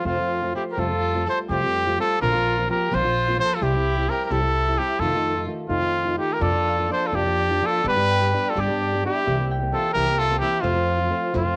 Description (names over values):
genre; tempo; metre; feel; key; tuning
mexican folk, mariachi; 85 BPM (dotted quarters); 6/8; rubato; F major; A4 = 442 Hz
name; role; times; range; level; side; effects
clear trumpet; melody; 0.0-11.6 s; F4 to C5; -25 LUFS; equal; cassette tape, plate reverb
rich violin; second line; 0.0-11.6 s; C4 to A4; -35 LUFS; equal; cassette tape, plate reverb
nylon-string guitar; accompaniment; 0.0-11.6 s; F2 to G4; -30 LUFS; equal; cassette tape, plate reverb
concert harp; arpeggios; 0.0-2.3, 6.4-11.6 s; C5 to D7; -34 LUFS; equal; cassette tape, plate reverb
upright bass; bass; 0.0-11.6 s; Bb1 to G2; -29 LUFS; equal; none
room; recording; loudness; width
light reverb; home recording on cassette; -22 LUFS; mono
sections
0.8-11.6 A section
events
none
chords
0.0 F; 0.8 Fadd9; 2.2 Bbadd9; 3.6 C; 5.0 F7; 6.4 Bbadd9/F; 7.9 G; 9.3 C7; 10.6 F